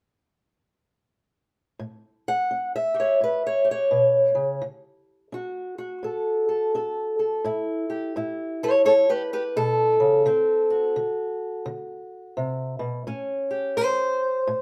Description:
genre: acoustic country blues, solo or duo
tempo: 85 BPM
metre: 4/4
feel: swing 62% on 8ths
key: A mixolydian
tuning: A4 = 437 Hz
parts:
  - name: fingerpicked old ladder-braced acoustic guitar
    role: solo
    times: 1.8-14.6 s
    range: A2 to F#5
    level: -24 LUFS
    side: equal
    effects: none
room: moderate studio reverb, RT60 0.7 s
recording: band playing live in one room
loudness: -24 LUFS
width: mono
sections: 1.8-7.4 A section; 7.4-14.6 B section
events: steel-string acoustic guitar solo 7.4-14.6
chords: 1.8 A7; 4.6 D; 7.4 A7; 10.3 D7; 13.1 A7

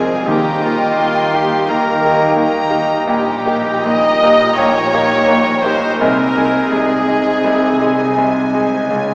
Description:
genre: classical, romantic movement for piano and orchestra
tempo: 84 BPM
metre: 4/4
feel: rubato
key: Eb major, Ab major from 3.1 s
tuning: A4 = 440 Hz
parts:
  - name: bright concert grand piano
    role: melody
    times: 0.0-9.1 s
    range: Ab1 to Ab4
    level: -18 LUFS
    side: equal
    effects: none
  - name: warm chamber violin section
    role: melody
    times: 0.0-9.1 s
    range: Ab5 to C6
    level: -26 LUFS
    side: equal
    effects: none
  - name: clear oboe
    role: second line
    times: 0.0-8.5 s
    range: F4 to Eb5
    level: -21 LUFS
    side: equal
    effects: none
  - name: dark clarinet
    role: second line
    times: 0.0-9.1 s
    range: Db5 to Eb5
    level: -24 LUFS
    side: equal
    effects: none
  - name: mellow hollow silver concert flute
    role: second line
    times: 0.0-9.1 s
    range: G5 to Ab5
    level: -23 LUFS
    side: equal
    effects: none
  - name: warm chamber violin section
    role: second line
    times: 0.0-9.1 s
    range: Db5 to Ab5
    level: -25 LUFS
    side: equal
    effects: none
  - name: mellow bassoon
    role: accompaniment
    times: 0.0-9.1 s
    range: Ab3 to C4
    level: -22 LUFS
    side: equal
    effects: none
  - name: warm chamber viola section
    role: accompaniment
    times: 0.0-8.5 s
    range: F4 to Eb5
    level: -18 LUFS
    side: equal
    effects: none
  - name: dark French horn section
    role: sustained chords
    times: 0.0-9.1 s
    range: F3 to Eb4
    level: -23 LUFS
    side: equal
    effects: none
  - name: dark chamber cello section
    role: bass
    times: 0.0-9.1 s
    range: Eb2 to Db3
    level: -23 LUFS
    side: equal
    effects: none
  - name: dark studio double bass section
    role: bass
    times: 0.0-9.1 s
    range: F1 to Eb2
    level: -28 LUFS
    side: equal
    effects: none
  - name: timpani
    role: percussion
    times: 0.3-1.3 s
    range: Eb3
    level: -28 LUFS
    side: equal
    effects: none
room: wet church reverb, RT60 2.8 s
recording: small speaker sound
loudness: -11 LUFS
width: side -33 dB against mid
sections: 0.0-9.1 A section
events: none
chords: 0.3 Eb; 3.1 Eb7/Bb; 6.0 Ab/C

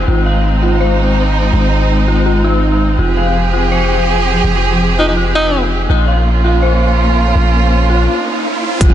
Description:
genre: half-time drum and bass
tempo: 165 BPM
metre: 4/4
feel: half-time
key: unclear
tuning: A4 = 438 Hz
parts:
  - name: warm studio string section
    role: sustained chords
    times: 0.0-8.9 s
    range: F3 to Ab4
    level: -16 LUFS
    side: right 2 dB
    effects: sidechain pumping
  - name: dark detuned synth bell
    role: arpeggios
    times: 0.0-8.9 s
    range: Eb4 to F5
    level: -19 LUFS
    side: left 2 dB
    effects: chorus, phaser, digital delay
  - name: long sustained 808-style bass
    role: bass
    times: 0.0-8.9 s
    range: F1 to Bb1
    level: -14 LUFS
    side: equal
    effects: none
  - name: breathy alto saxophone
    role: melody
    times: 5.0-5.6 s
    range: Eb4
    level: -21 LUFS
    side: equal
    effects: ping-pong delay
  - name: riser and impact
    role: sound effects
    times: 7.5-8.9 s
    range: none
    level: -23 LUFS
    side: right 1 dB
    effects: none
  - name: electronic kick drum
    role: drums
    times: 8.8-8.9 s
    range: none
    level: -8 LUFS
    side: equal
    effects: distortion
  - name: industrial drum kit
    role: drums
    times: 8.8-8.9 s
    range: hi-hat, toms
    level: -19 LUFS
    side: right 2 dB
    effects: low-pass filter on hats, low-pass filter on toms, low-pass filter on room
room: light reverb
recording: nothing above 10.5 kHz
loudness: -10 LUFS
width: side -11 dB against mid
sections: 0.0-8.8 A section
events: riser 7.5-8.8; break 8.1-8.8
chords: 0.1 Ab; 3.0 Fmadd9; 5.9 Bbm

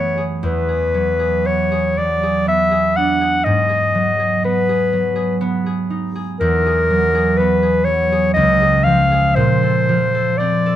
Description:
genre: classical, impressionist duo for clarinet and harp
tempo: 61 BPM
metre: 3/4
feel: uneven beats, rubato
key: unclear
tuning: A4 = 439 Hz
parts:
  - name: clear clarinet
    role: melody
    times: 0.0-10.8 s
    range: A#4 to F#5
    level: -16 LUFS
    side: left 2 dB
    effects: none
  - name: concert harp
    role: accompaniment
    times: 0.0-10.8 s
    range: C#2 to A4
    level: -18 LUFS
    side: right 2 dB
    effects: none
room: moderate recital hall reverb, RT60 1.4 s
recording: close, detailed microphones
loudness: -14 LUFS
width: side -11 dB against mid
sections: 0.0-10.8 A section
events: none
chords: 0.4 E9; 3.4 G#m7; 6.4 Emaj9; 8.3 C#add9; 9.4 A#sus2

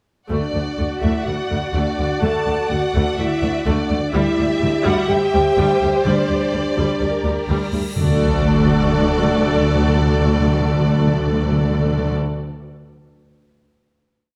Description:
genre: cinematic, epic orchestral film score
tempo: 126 BPM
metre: 4/4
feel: straight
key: D mixolydian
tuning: A4 = 444 Hz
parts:
  - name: warm symphonic violin section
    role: melody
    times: 0.3-12.1 s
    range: D5 to A5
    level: -30 LUFS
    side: equal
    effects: none
  - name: warm symphonic violin section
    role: second line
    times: 0.3-12.1 s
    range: A4 to F#5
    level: -29 LUFS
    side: equal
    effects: none
  - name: warm symphonic viola section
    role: accompaniment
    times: 0.3-12.1 s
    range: G3 to A4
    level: -26 LUFS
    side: equal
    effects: none
  - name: dark French horn section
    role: sustained chords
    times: 0.3-12.1 s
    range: D4 to A4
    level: -26 LUFS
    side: equal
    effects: none
  - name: rich symphonic double bass section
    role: bass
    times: 0.3-12.1 s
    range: D2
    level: -25 LUFS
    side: equal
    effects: none
  - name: warm symphonic cello section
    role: bass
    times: 0.3-12.2 s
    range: D2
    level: -26 LUFS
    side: equal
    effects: none
  - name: timpani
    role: percussion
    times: 6.0-12.2 s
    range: D3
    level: -23 LUFS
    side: equal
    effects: none
  - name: cymbal swell and sub drop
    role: sound effects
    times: 7.5-9.9 s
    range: none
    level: -30 LUFS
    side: equal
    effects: none
room: moderate scoring stage reverb, RT60 1.6 s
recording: none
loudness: -18 LUFS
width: mono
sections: 0.3-8.0 theme; 8.0-11.8 final chord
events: cymbal swell 7.5-8.0; impact 8.0-9.9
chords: 0.3 D; 4.1 C/D; 6.1 Gm/D; 8.0 D

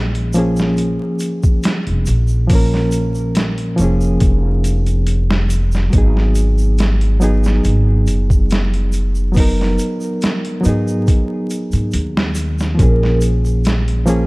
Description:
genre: trip hop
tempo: 70 BPM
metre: 4/4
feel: straight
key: Bb phrygian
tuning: A4 = 437 Hz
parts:
  - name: bright reed electric piano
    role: accompaniment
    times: 0.0-14.3 s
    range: F3 to Bb4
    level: -19 LUFS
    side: equal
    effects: tremolo, low-pass filter, tape echo
  - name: concert harp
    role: arpeggios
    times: 0.0-0.5 s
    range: none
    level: barely audible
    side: none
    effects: none
  - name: upright bass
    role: bass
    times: 0.0-14.3 s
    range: F1 to Ab2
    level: -16 LUFS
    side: equal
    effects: tube saturation
  - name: boom bap sampler-style drum kit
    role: drums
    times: 0.1-14.3 s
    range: hi-hat, kick drum, snare drum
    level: -18 LUFS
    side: equal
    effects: overdrive, small room ambience
  - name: tube shaker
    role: percussion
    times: 0.3-14.3 s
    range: none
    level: -36 LUFS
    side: right 2 dB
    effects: none
  - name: vibraphone with soft mallets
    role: melody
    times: 12.8-13.2 s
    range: Bb4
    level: -23 LUFS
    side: right 2 dB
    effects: none
room: light reverb, studio ambience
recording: dark, warm production, vinyl crackle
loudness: -13 LUFS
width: side -24 dB against mid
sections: 0.0-14.3 A section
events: filter sweep on reed electric piano 0.0-14.3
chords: 0.0 Bbm7; 5.9 Abm7; 12.8 Bbm7

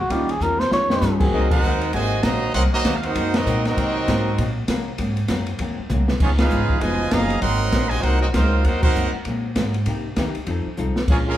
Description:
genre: jazz, big band swing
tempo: 197 BPM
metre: 4/4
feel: swing 61% on 8ths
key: Ab major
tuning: A4 = 441 Hz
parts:
  - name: trumpet with cup mute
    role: melody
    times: 0.0-1.2 s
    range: Gb4 to Db5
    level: -22 LUFS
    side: equal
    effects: none
  - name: upright bass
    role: bass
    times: 0.0-11.4 s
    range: F1 to C3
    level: -23 LUFS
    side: equal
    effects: none
  - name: clear grand piano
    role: accompaniment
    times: 0.1-1.0 s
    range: G3 to G4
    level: -28 LUFS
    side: right 2 dB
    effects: none
  - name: vintage hollow-body jazz guitar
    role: accompaniment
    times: 0.1-11.3 s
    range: Ab2 to A4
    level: -28 LUFS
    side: left 3 dB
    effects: none
  - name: open jazz drum kit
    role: drums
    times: 0.1-11.2 s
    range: crash cymbal, hi-hat, kick drum, ride cymbal, snare drum, toms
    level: -24 LUFS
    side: equal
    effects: none
  - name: muted trombone section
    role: sustained chords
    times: 1.2-1.6 s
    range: Gb3 to Ab4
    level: -25 LUFS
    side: left 2 dB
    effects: none
  - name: brilliant trumpet section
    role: melody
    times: 1.3-11.4 s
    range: Bb3 to C6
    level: -23 LUFS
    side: right 2 dB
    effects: none
  - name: mellow trombone section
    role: second line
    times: 1.3-11.4 s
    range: Cb3 to Gb4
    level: -27 LUFS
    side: right 3 dB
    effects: none
room: moderate large studio reverb, RT60 0.9 s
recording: heard from further back in the room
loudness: -18 LUFS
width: side -12 dB against mid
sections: 0.0-1.3 A section; 1.3-11.4 B section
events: muted trumpet solo 0.0-1.3; drum fill 0.4-1.0, 5.9-6.2, 10.8-11.1; band accent 1.5, 3.3, 6.4, 8.8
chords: 0.1 Eb9; 1.3 Ab9; 6.2 Db9; 7.4 Ab9; 9.9 Cm7; 10.5 F7

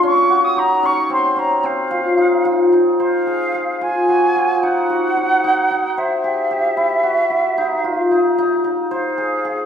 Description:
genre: contemporary instrumental, contemporary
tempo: 223 BPM (eighths)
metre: 11/8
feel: straight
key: F phrygian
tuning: A4 = 443 Hz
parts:
  - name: mellow concert flute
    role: melody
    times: 0.0-9.7 s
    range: E5 to Eb6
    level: -18 LUFS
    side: right 1 dB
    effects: none
  - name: cimbalom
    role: arpeggios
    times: 0.0-9.7 s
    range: Bb3 to C5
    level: -17 LUFS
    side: left 1 dB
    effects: none
room: wet recital hall reverb, RT60 1.4 s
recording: recorded in a church or concert hall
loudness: -14 LUFS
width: side -8 dB against mid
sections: 0.0-3.0 A section; 3.0-9.7 B section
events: none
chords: 0.0 Ebm7; 1.6 F5; 3.0 Fm; 6.0 C; 7.6 Ebsus2; 8.9 Fm

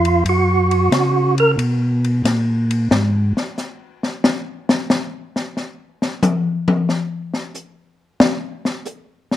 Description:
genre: soul jazz organ trio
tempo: 91 BPM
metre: 4/4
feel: swing 68% on 8ths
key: Eb minor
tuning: A4 = 435 Hz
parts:
  - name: percussive tonewheel organ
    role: melody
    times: 0.0-1.5 s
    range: F4 to Bb4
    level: -16 LUFS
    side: right 3 dB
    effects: slow rotary speaker, overdrive, chorus vibrato, plate reverb
  - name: mellow tonewheel organ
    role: bass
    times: 0.0-3.3 s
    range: F2 to Db3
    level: -17 LUFS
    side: equal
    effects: slow rotary speaker
  - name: open jazz drum kit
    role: drums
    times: 0.0-9.4 s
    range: hi-hat, ride cymbal, snare drum, toms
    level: -18 LUFS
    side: left 2 dB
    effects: none
room: light reverb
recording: none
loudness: -16 LUFS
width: side -12 dB against mid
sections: 0.0-9.4 A section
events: tonewheel organ solo 0.0-9.4; drum solo 2.9-9.4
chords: 0.0 Ebm7 (rootless); 2.9 N.C.

